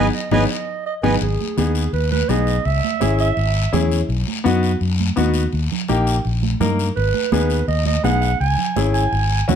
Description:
latin, cumbia; 167 BPM; 4/4; straight; G# minor; A4 = 437 Hz
accordion; melody; 0.0-1.2 s; B4 to G#5; -23 LUFS; right 4 dB
bright upright piano; accompaniment; 0.0-9.6 s; A#3 to A#4; -21 LUFS; left 4 dB
fingered electric bass; bass; 0.0-9.6 s; G#1 to G2; -19 LUFS; left 1 dB
growling clarinet; second line; 0.1-3.9, 7.0-9.6 s; G#4 to G#5; -23 LUFS; right 6 dB
congas; percussion; 0.3-9.6 s; -25 LUFS; right 10 dB
guiro; percussion; 0.3-9.6 s; -31 LUFS; left 8 dB
light reverb; dark, warm production; -16 LUFS; side -8 dB against mid
0.0-1.2 A section; 1.2-9.6 B section
drum fill 0.0-1.2; band accent 0.0-1.2; clarinet solo 1.2-9.6
0.0 G#m; 2.7 C#m; 4.1 B; 5.5 D#; 7.0 G#m; 8.4 C#m
0.13 0.49 0.85 | 1.21 1.57 1.93 2.29 | 2.65 3.01 3.37 3.73 | 4.09 4.45 4.81 5.17 | 5.53 5.89 6.25 6.61 | 6.97 7.33 7.69 8.05 | 8.41 8.77 9.13 9.49

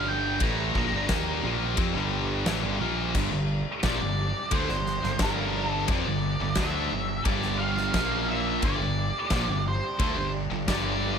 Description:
quiet-loud alternative rock; 88 BPM; 4/4; straight; G dorian; A4 = 440 Hz
octave-fuzz lead guitar; melody; 0.0-11.2 s; Bb4 to Bb5; -31 LUFS; right 1 dB; distortion
string machine, violins; sustained chords; 0.0-11.2 s; F3 to Bb5; -41 LUFS; equal
high-gain distorted guitar; riff; 0.0-11.2 s; G2 to Eb4; -32 LUFS; left 11 dB; distortion
thick fuzz guitar; riff; 0.0-11.2 s; G2 to Eb4; -32 LUFS; right 11 dB; distortion
fuzz fingered electric bass; bass; 0.0-11.2 s; G1 to F2; -33 LUFS; equal; overdrive
huge arena drum kit; drums; 0.4-10.8 s; crash cymbal, kick drum, ride cymbal, snare drum; -30 LUFS; left 1 dB
sludgy distorted guitar; riff; 3.1-11.2 s; G2 to D4; -34 LUFS; equal; overdrive
light reverb; -24 LUFS; side -7 dB against mid
0.0-11.2 A section
0.0 Gm; 7.9 Bb5; 8.6 Gm
| 0.42 1.11 1.79 2.47 | 3.16 3.84 4.52 5.21 | 5.89 6.57 7.26 7.94 | 8.63 9.31 9.99 10.68

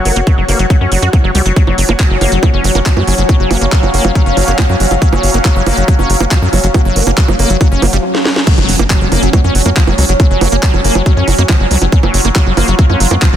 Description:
psychedelic trance; 139 BPM; 4/4; straight; F# major; A4 = 441 Hz
liquid acid bass; riff; 0.0-13.4 s; E#3 to F#4; -18 LUFS; moving between left 4 dB and right 3 dB; chorus, auto-pan, sidechain pumping, tape echo
airy breathy pad; texture; 0.0-8.0 s; F#4 to F#5; -21 LUFS; left 2 dB; chorus, sidechain pumping
formant-sweep wobble bass; second line; 0.1-11.8 s; F#3 to A#3; -26 LUFS; equal
tight sequencer bass; bass; 0.1-13.4 s; F#1 to F#2; -13 LUFS; equal
garage drum kit; drums; 0.1-13.3 s; bongos, crash cymbal, handclaps, hi-hat, snare drum; -16 LUFS; right 4 dB
electronic kick drum; drums; 0.3-13.3 s; -13 LUFS; equal
bubbling stepped-filter texture; sustained chords; 1.6-13.4 s; F#3 to E#4; -18 LUFS; equal; chorus, built-in reverb, sidechain pumping
impact; sound effects; 8.5-10.2 s; -21 LUFS; equal
little or no reverb; dense, heavily limited modern master; -9 LUFS; side -10 dB against mid
0.0-8.5 A section; 8.5-13.4 B section
drum fill 8.1-8.5; band accent 8.4; drop 8.5-13.4; impact 8.5-10.2
0.0 F#5
0.27 0.70 1.13 | 1.56 2.00 2.43 2.86 | 3.29 3.72 4.15 4.59 | 5.02 5.45 5.88 6.31 | 6.74 7.18 7.61 8.04 | 8.47 8.90 9.33 9.77 | 10.20 10.63 11.06 11.49 | 11.92 12.36 12.79 13.22

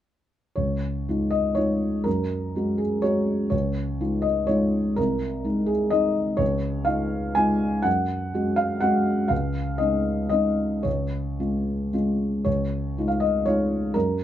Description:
neoclassical minimalist piano; 123 BPM; 3/4; rubato; Db major; A4 = 440 Hz
felt-muted upright piano; solo; 0.6-14.2 s; C2 to Ab5; -22 LUFS; equal
light reverb; dark, warm production; -22 LUFS; side -11 dB against mid
0.6-12.5 A section; 12.5-14.2 A section
0.6 Dbadd9; 2.1 Gbsus2; 3.5 Dbadd9; 5.0 Ab/C; 6.4 Dbadd9; 7.9 Gbsus2; 9.3 Dbadd9; 10.9 Db; 12.5 Dbadd9
| 0.57 1.07 1.57 | 2.06 2.55 3.04 | 3.53 4.01 4.50 | 4.97 5.46 5.93 | 6.41 6.89 7.37 | 7.86 8.34 8.82 | 9.31 9.81 10.31 | 10.85 11.39 11.93 | 12.46 12.97 13.46 | 13.95

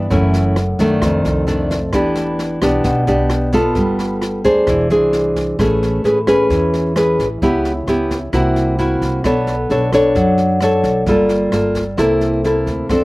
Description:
bossa nova; 131 BPM; 4/4; straight; A4 = 441 Hz
nylon-string guitar; accompaniment; 0.0-13.0 s; F2 to C#5; -14 LUFS; equal
upright bass; bass; 0.0-13.0 s; E1 to G2; -22 LUFS; equal
jazz brush drum kit; drums; 0.1-13.0 s; kick drum, rim click, snare drum; -25 LUFS; equal
little or no reverb; recorded outdoors, with no room sound; -13 LUFS; side -21 dB against mid
0.0-5.6 A section; 5.6-13.0 B section
0.1 F#m7; 1.0 F6; 1.9 Em7; 3.8 G9; 4.7 Eaug7; 5.6 Amaj9; 7.4 C#m7b5; 8.3 C7#11; 9.2 Bm9; 11.1 Gm9; 12.0 C13
| 0.11 0.56 1.02 1.48 | 1.93 2.39 2.85 3.30 | 3.76 4.22 4.67 5.13 | 5.59 6.04 6.50 6.96 | 7.42 7.87 8.33 8.79 | 9.24 9.70 10.16 10.61 | 11.07 11.53 11.98 12.44 | 12.90

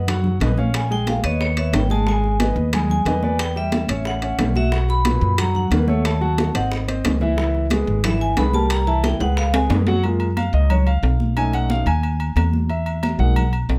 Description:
Afro-Cuban jazz; 181 BPM; 4/4; straight; A4 = 440 Hz
vibraphone with medium hard mallets; melody; 0.0-9.6 s; C#5 to B5; -28 LUFS; equal
dark concert grand piano; accompaniment; 0.0-13.5 s; A#2 to G#5; -27 LUFS; equal
upright bass; bass; 0.0-13.8 s; G#1 to F#2; -22 LUFS; equal
bongos; percussion; 0.1-10.0 s; -31 LUFS; equal
congas; percussion; 0.1-13.8 s; -29 LUFS; equal
timbales and agogo bells; percussion; 0.1-13.8 s; -30 LUFS; equal
little or no reverb; close, detailed microphones; -20 LUFS; mono
0.0-10.0 A section; 10.0-13.8 A section
vibraphone solo 0.0-10.0; drum fill 9.2-10.0; grand piano solo 10.0-13.8
0.0 Badd9; 0.7 A#m7; 1.4 G#madd11; 2.1 G#m; 3.4 Em7; 4.1 Aadd9; 4.7 Bmaj7; 6.0 D#m7b5; 6.7 G#; 7.4 C#m7; 8.7 C7; 9.4 C#5; 10.0 F#maj9; 11.4 B7; 12.7 Emaj9#11
0.08 0.41 | 0.74 1.08 1.41 1.74 | 2.07 2.40 2.73 3.06 | 3.40 3.73 4.06 4.39 | 4.72 5.05 5.39 5.72 | 6.05 6.38 6.71 7.04 | 7.38 7.71 8.04 8.37 | 8.71 9.04 9.37 9.70 | 10.04 10.37 10.70 11.03 | 11.37 11.70 12.03 12.37 | 12.70 13.03 13.36 13.70

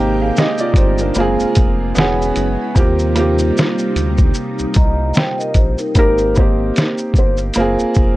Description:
lo-fi hip hop; 75 BPM; 4/4; swing 57% on 16ths; A4 = 440 Hz
clear upright piano; accompaniment; 0.0-8.2 s; Bb3 to G5; -18 LUFS; right 1 dB; cassette tape
ensemble organ-string; sustained chords; 0.0-5.9 s; C3 to G4; -24 LUFS; equal; ensemble chorus
round analog bass; bass; 0.0-8.2 s; E1 to Eb2; -19 LUFS; equal
lo-fi sampler-style drum kit; drums; 0.4-8.2 s; hi-hat, kick drum, shaker, snare drum; -14 LUFS; equal
vibraphone with soft mallets; second line; 4.8-6.2 s; Eb4 to Bb5; -23 LUFS; left 1 dB; tape echo
felt-muted upright piano; melody; 6.0-7.4 s; Bb4 to C5; -20 LUFS; left 1 dB; tape echo
little or no reverb; dry, gritty hardware recording; -13 LUFS; side -17 dB against mid
0.0-6.0 A section; 6.0-8.2 B section
0.0 Abmaj9; 1.2 Gbmaj9#11; 2.0 E6; 2.8 Eb6; 6.0 Abmaj9; 7.6 Gbmaj9#11
0.36 1.16 1.96 | 2.76 3.56 4.36 5.16 | 5.96 6.76 7.56

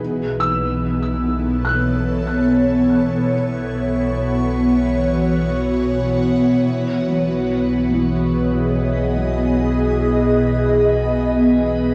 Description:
ambient; 72 BPM; 4/4; straight; A4 = 440 Hz
ethereal airy pad; sustained chords; 0.0-11.9 s; B2 to D#5; -19 LUFS; equal; ensemble chorus, built-in reverb, phaser, cassette tape, plate reverb
felt-muted upright piano; arpeggios; 0.0-11.9 s; E3 to F#6; -29 LUFS; equal; cassette tape, plate reverb, tape echo
warm sub bass; bass; 0.0-11.9 s; B1; -28 LUFS; equal
drifting glass-harmonics texture; texture; 7.8-11.9 s; B5; -44 LUFS; equal; chorus, built-in reverb, cassette tape, plate reverb
wet studio ambience, RT60 0.5 s; home recording on cassette; -18 LUFS; mono
0.0-6.7 A section; 6.7-11.9 B section
0.0 B7sus4; 3.3 A6/B; 6.7 C#m7/B
| 0.00 0.83 1.66 2.50 | 3.33 4.16 5.00 5.83 | 6.66 7.50 8.33 9.16 | 9.99 10.83 11.66

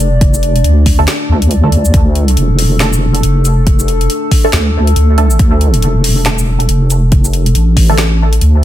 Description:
deep dubstep; 139 BPM; 4/4; swing 59% on 16ths, half-time; D minor; A4 = 440 Hz
dark analog pad; sustained chords; 0.0-8.6 s; A3 to D5; -20 LUFS; left 2 dB; wide subtle chorus
deep soft wobble bass; bass; 0.0-8.6 s; E1 to D2; -10 LUFS; equal; chorus
deep house drum kit; drums; 0.0-8.5 s; handclaps, hi-hat, shaker, snare drum; -18 LUFS; left 1 dB; studio reverb
electronic kick drum; drums; 0.2-7.9 s; -10 LUFS; equal; studio reverb
filtered dub chord stab; stabs; 1.0-7.9 s; D3 to A4; -19 LUFS; right 2 dB; phaser, dub echo
little or no reverb; dense, heavily limited modern master; -8 LUFS; side -13 dB against mid
0.0-8.6 A section
0.0 D5
| 0.21 0.65 1.08 1.51 | 1.94 2.37 2.80 3.23 | 3.67 4.10 4.53 4.96 | 5.39 5.83 6.26 6.69 | 7.12 7.55 7.98 8.41

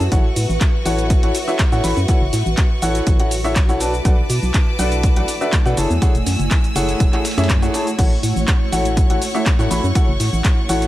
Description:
piano house; 122 BPM; 4/4; straight; A major; A4 = 440 Hz
bright studio violin section; sustained chords; 0.0-10.9 s; F#4 to E6; -29 LUFS; left 1 dB; sidechain pumping
organ-like FM bass; bass; 0.0-10.9 s; E1 to B2; -20 LUFS; equal; sidechain pumping
punchy analog drum machine; drums; 0.0-10.9 s; cabasa, crash cymbal, handclaps, hi-hat; -26 LUFS; equal
granular cloud pad; texture; 0.0-10.9 s; A3 to E5; -27 LUFS; right 1 dB; built-in reverb, sidechain pumping
clear concert grand piano; riff; 0.1-10.9 s; D4 to B5; -22 LUFS; left 1 dB; sidechain pumping, dub echo
dusty soul sampler-style drum kit; drums; 0.1-10.9 s; hi-hat, snare drum; -34 LUFS; right 1 dB
electronic kick drum; drums; 0.1-10.5 s; -16 LUFS; equal
little or no reverb; -15 LUFS; side -15 dB against mid
0.0-10.9 A section
0.1 A6; 3.8 Bm7; 5.8 F#m9; 8.0 A6
| 0.12 0.61 1.10 1.59 | 2.08 2.58 3.07 3.56 | 4.05 4.54 5.04 5.53 | 6.02 6.51 7.00 7.49 | 7.99 8.48 8.97 9.46 | 9.95 10.45

